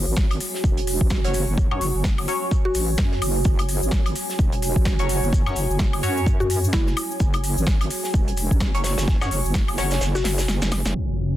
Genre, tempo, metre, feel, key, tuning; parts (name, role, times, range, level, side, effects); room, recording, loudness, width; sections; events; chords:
bass house; 128 BPM; 4/4; swing 58% on 16ths; A4 = 440 Hz
wobble bass; bass; 0.0-10.9 s; E1 to F#2; -25 LUFS; equal; chorus, tube saturation, sidechain pumping
deep dark ambient pad; texture; 0.0-11.4 s; F#4 to G#5; -30 LUFS; right 3 dB; chorus, built-in reverb, sidechain pumping
big-room dance drum kit; drums; 0.2-11.1 s; crash cymbal, hi-hat, shaker, snare drum, woodblock; -28 LUFS; left 1 dB; overdrive
electronic kick drum; drums; 0.2-9.7 s; -20 LUFS; equal; overdrive
warm soul drum kit; drums; 0.2-10.9 s; hi-hat, shaker, snare drum; -33 LUFS; right 1 dB; sidechain pumping on hats, high-pass filter on hats, high-pass filter on snare, sidechain pumping on perc, high-pass filter on perc, high-pass filter on room
band-passed chord stab; stabs; 1.2-10.0 s; F#3 to C#5; -29 LUFS; left 2 dB; phaser, sidechain pumping, digital delay
mallet-like synth pluck; melody; 2.7-3.0, 6.4-10.5 s; E4 to F#4; -28 LUFS; left 3 dB; chorus, digital delay
sweeping resonant pad; sustained chords; 11.0-11.4 s; F#2 to F#4; -24 LUFS; left 1 dB; chorus, sidechain pumping
impact; sound effects; 11.0-11.4 s; -24 LUFS; equal
light reverb; dense, heavily limited modern master, low-pass filter; -19 LUFS; side -13 dB against mid
0.0-11.0 A section
kick drops out 10.0-11.0; drum fill 10.2-11.0; impact 11.0-11.4
0.0 F#5